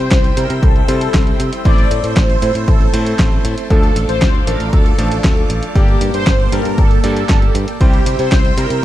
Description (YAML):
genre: italo disco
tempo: 117 BPM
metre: 4/4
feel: straight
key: G dorian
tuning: A4 = 440 Hz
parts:
  - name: mellow synth brass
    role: melody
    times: 0.0-8.8 s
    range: G4 to D5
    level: -21 LUFS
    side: equal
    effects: chorus, digital delay
  - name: string machine, full ensemble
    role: sustained chords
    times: 0.0-8.8 s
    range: Bb3 to E6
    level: -25 LUFS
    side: equal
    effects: phaser, ensemble chorus
  - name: bright electric grand piano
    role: stabs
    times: 0.0-8.8 s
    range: F3 to D5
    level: -23 LUFS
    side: right 1 dB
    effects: none
  - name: modern bright fingered electric bass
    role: bass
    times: 0.0-8.8 s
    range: G1 to C3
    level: -19 LUFS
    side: equal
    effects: none
  - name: clean 12-bit digital drum machine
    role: drums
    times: 0.1-8.8 s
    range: handclaps, hi-hat, snare drum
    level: -20 LUFS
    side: equal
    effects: none
  - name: electronic kick drum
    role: drums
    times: 0.1-8.4 s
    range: none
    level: -14 LUFS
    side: equal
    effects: none
room: little or no reverb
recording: dark, warm production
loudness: -11 LUFS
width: side -14 dB against mid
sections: 0.0-8.8 A section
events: none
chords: 0.0 C; 1.7 Am; 3.7 Dm; 5.8 Gmadd9; 7.8 C